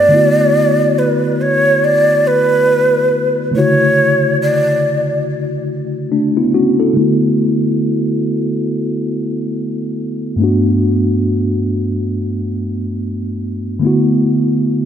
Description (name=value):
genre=R&B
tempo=70 BPM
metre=4/4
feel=swing 58% on 16ths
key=D major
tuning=A4 = 440 Hz
part: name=breathy mellow shakuhachi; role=melody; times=0.0-5.2 s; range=B4 to D5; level=-12 LUFS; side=right 1 dB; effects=ping-pong delay
part: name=mellow tine electric piano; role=accompaniment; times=0.0-14.9 s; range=G2 to A4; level=-15 LUFS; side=equal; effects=medium stereo tremolo, low-pass filter
room=wet lush hall reverb, RT60 2.3 s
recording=dreamy mix soaked in reverb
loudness=-12 LUFS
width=side -9 dB against mid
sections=0.0-7.0 A section; 7.0-14.9 B section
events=filter sweep on tine electric piano 7.0-14.9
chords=0.1 D6; 3.5 Dmaj7; 7.0 D6; 10.4 Gmaj7; 13.8 D6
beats=| 0.12 0.97 1.83 2.69 | 3.55 4.40 5.26 6.12 | 6.97 7.83 8.69 9.55 | 10.40 11.26 12.12 12.97 | 13.83 14.69